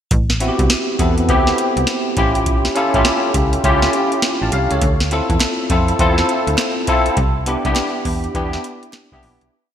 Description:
R&B, new jack swing; 102 BPM; 4/4; swing 64% on 16ths; A minor; A4 = 440 Hz
slap-like FM bass; bass; 0.1-9.5 s; A1 to F2; -20 LUFS; equal
booming analog drum machine; drums; 0.1-9.5 s; hi-hat, kick drum, snare drum; -19 LUFS; equal; gated reverb
barky tine electric piano; accompaniment; 0.4-9.5 s; B3 to A5; -17 LUFS; left 1 dB; ensemble chorus
group handclap; percussion; 5.4-9.1 s; -35 LUFS; right 7 dB
moderate lush hall reverb, RT60 2.3 s; bright 1980s-style digital production; -14 LUFS; side -9 dB against mid
0.1-9.5 verse
fade-out 7.2-9.5
0.1 Am7; 2.2 A7b13; 4.8 Dm9; 7.2 Cmaj9
| 0.11 0.70 1.29 1.88 | 2.46 3.05 3.64 4.23 | 4.82 5.40 5.99 6.58 | 7.17 7.76 8.35 8.93

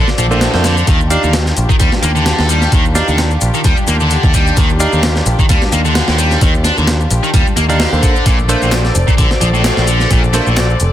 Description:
breakbeat, breaks; 130 BPM; 4/4; swing 55% on 16ths; Eb lydian; A4 = 440 Hz
dark studio string section; sustained chords; 0.0-10.9 s; D4 to D5; -22 LUFS; left 2 dB; sidechain pumping
distorted electric guitar; riff; 0.0-10.6 s; A2 to D4; -16 LUFS; equal; overdrive, vintage 12-bit sampler grit, digital delay
picked electric bass; bass; 0.0-10.9 s; F1 to F2; -15 LUFS; equal
breakbeat sampler-style drum kit; drums; 0.1-10.9 s; hi-hat, kick drum, snare drum; -14 LUFS; equal
electronic shaker and handclaps; drums; 0.1-10.9 s; -24 LUFS; left 5 dB
barky tine electric piano; stabs; 0.3-10.5 s; Bb3 to F5; -19 LUFS; right 2 dB; overdrive, digital delay
light reverb, digital ambience; dense, heavily limited modern master; -10 LUFS; side -12 dB against mid
0.0-10.9 A section
0.0 Bbmaj9; 0.9 Ebmaj9; 8.0 Bbmaj9
0.42 | 0.88 1.34 1.80 2.26 | 2.72 3.19 3.65 4.11 | 4.57 5.03 5.49 5.95 | 6.42 6.88 7.34 7.80 | 8.26 8.72 9.19 9.65 | 10.11 10.57

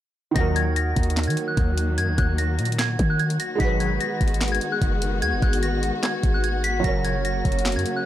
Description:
hip hop, trap; 148 BPM; 4/4; half-time; Eb minor; A4 = 437 Hz
felt-muted upright piano; accompaniment; 0.3-8.1 s; Eb3 to Db5; -29 LUFS; right 6 dB
soft synth bell; melody; 0.4-8.1 s; Gb6 to Cb7; -28 LUFS; left 1 dB; chorus, phaser
warm symphonic string section; sustained chords; 0.4-8.1 s; Db3 to Gb4; -29 LUFS; left 3 dB
resonant sweep polysynth; stabs; 0.4-0.7, 3.6-3.9, 6.8-7.1 s; Bb2 to Gb3; -33 LUFS; left 4 dB; chorus, ping-pong delay
warm 808-style bass; bass; 0.4-7.9 s; Gb1 to Eb3; -24 LUFS; equal
trap drum kit; drums; 0.4-8.0 s; handclaps, hi-hat, kick drum, snare drum; -25 LUFS; equal
little or no reverb; -20 LUFS; side -12 dB against mid
0.4-8.1 A section
0.4 Ebm; 3.6 Abm7; 6.8 Gb
| 0.36 0.76 1.17 1.57 | 1.98 2.38 2.79 3.19 | 3.60 4.00 4.41 4.82 | 5.22 5.63 6.03 6.44 | 6.84 7.25 7.65

